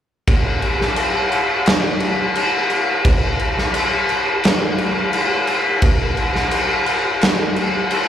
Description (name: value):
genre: metal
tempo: 87 BPM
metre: 4/4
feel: straight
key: none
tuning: none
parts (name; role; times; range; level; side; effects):
- oversized low-tuned drum kit; drums; 0.3-8.1 s; crash cymbal, kick drum, snare drum; -15 LUFS; equal; none
room: light reverb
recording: live gig heard through the venue's PA, club reverb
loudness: -15 LUFS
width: side -10 dB against mid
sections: 0.3-8.1 A section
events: none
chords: none